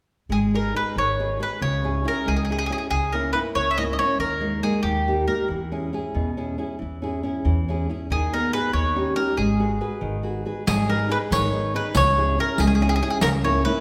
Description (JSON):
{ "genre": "italian folk, Italian serenade", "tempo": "93 BPM (dotted quarters)", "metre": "6/8", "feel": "rubato", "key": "G# minor", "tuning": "A4 = 439 Hz", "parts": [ { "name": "mandolin", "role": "melody", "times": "0.3-5.5, 8.1-13.8 s", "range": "G4 to E5", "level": "-26 LUFS", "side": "equal", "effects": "none" }, { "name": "nylon-string guitar", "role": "accompaniment", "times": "0.3-13.8 s", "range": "B2 to B4", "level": "-28 LUFS", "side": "equal", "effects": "none" }, { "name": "upright bass", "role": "bass", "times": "0.3-13.6 s", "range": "G#1 to E2", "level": "-29 LUFS", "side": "equal", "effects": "none" }, { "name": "riq", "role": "percussion", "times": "10.7-13.4 s", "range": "none", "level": "-30 LUFS", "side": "equal", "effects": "none" } ], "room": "wet recital hall reverb, RT60 1.5 s", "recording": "recorded in a church or concert hall", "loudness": "-23 LUFS", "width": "mono", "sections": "0.3-10.7 A section; 10.7-13.8 A section", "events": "none", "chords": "0.3 G#m; 1.6 C#m; 2.9 A#dim/C#; 4.2 D#sus4; 4.8 D#; 5.5 E6; 6.8 C#m/E; 8.1 G#m/D#; 8.7 D#7; 9.4 G#m7; 10.7 G#m; 12.0 C#m; 13.2 A#dim/C#" }